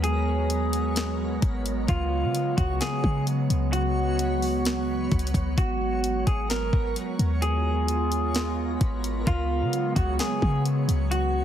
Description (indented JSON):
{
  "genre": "hip hop, atmospheric cloud-rap",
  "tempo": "130 BPM",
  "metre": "4/4",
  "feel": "half-time",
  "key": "G# dorian",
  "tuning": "A4 = 440 Hz",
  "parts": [
    { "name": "electric guitar through a small old amp", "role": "melody", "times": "0.0-11.4 s", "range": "E#4 to A#4", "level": "-29 LUFS", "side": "equal", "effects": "low-pass filter, digital delay" },
    { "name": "warbly tape-like pad", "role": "sustained chords", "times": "0.0-11.4 s", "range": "C#3 to E#4", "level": "-30 LUFS", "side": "right 2 dB", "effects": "chorus, built-in reverb, sidechain pumping" },
    { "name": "clean 808-style bass", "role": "bass", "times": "0.0-11.4 s", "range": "G#1 to C#3", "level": "-26 LUFS", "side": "equal", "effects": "none" },
    { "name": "trap drum kit", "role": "drums", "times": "0.0-11.2 s", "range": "hi-hat, kick drum, snare drum", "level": "-28 LUFS", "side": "left 1 dB", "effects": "none" },
    { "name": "backwards swelling texture", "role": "texture", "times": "0.0-11.4 s", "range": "F#3 to C#5", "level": "-38 LUFS", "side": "equal", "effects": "built-in reverb" }
  ],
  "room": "light reverb",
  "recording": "heavily compressed radio sound",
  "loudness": "-23 LUFS",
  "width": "side -10 dB against mid",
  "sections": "0.0-11.4 A section",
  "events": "none",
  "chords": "0.0 G#m11; 1.9 C#7sus4; 5.6 G#m11; 9.3 C#7sus4"
}